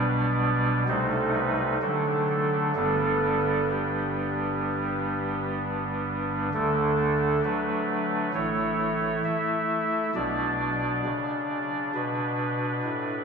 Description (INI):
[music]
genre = classical, chorale-style piece for pipe organ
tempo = 63-67 BPM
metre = 4/4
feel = straight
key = G major, D major from 6.5 s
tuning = A4 = 439 Hz
[part]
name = chamber organ, soft reed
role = solo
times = 0.0-13.2 s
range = G1 to E5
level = -24 LUFS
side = right 1 dB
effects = none
[sound]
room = wet church reverb, RT60 3.3 s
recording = studio reverb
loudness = -24 LUFS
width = side -5 dB against mid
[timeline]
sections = 0.0-6.5 A section; 6.5-13.2 B section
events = none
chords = 0.0 G/B; 0.9 Am7b5/C; 1.8 D; 2.7 G; 6.5 D; 8.3 A; 10.1 Bm